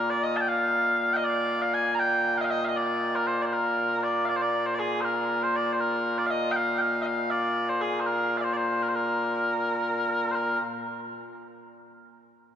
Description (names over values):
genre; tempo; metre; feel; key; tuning
scottish traditional, Scottish pipe music; 79 BPM (dotted quarters); 6/8; straight; Bb mixolydian; A4 = 443 Hz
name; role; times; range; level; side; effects
mellow small bagpipes; solo; 0.0-10.6 s; Bb2 to Bb5; -24 LUFS; equal; none
room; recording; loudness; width
wet cathedral reverb, RT60 4.1 s; recorded in a church or concert hall; -24 LUFS; side -9 dB against mid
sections
0.0-10.3 A section; 10.3-11.9 B section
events
none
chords
none